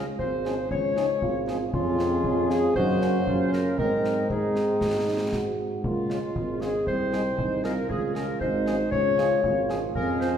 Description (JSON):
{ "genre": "military-style march for wind band", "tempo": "117 BPM", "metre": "2/4", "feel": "straight", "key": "Db major", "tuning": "A4 = 438 Hz", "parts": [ { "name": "mellow cornet", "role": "melody", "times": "0.0-10.4 s", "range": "Eb4 to Ab4", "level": "-36 LUFS", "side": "right 2 dB", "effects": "none" }, { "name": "clear euphonium", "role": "second line", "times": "0.0-10.4 s", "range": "Ab3 to Gb4", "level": "-32 LUFS", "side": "right 6 dB", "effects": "none" }, { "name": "warm woodwind section", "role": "second line", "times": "0.0-10.4 s", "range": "F4 to Db5", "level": "-27 LUFS", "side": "left 2 dB", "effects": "none" }, { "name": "mellow French horn section", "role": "accompaniment", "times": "0.0-10.4 s", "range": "Db3 to Eb4", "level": "-34 LUFS", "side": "left 3 dB", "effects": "none" }, { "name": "mellow tuba", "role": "bass", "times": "0.0-10.4 s", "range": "Ab1 to Ab2", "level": "-28 LUFS", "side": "right 1 dB", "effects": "none" }, { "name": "concert bass drum and concert snare drum", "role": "drums", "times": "0.2-10.3 s", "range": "none", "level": "-35 LUFS", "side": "equal", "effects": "none" } ], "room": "wet recital hall reverb, RT60 1.8 s", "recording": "recorded in a church or concert hall", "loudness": "-23 LUFS", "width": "side -8 dB against mid", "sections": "0.0-10.4 A section", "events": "none", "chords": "0.0 Db; 1.7 Db/F; 2.8 Gb; 3.8 Ab; 5.8 Db; 6.9 Ab/C; 7.9 Db" }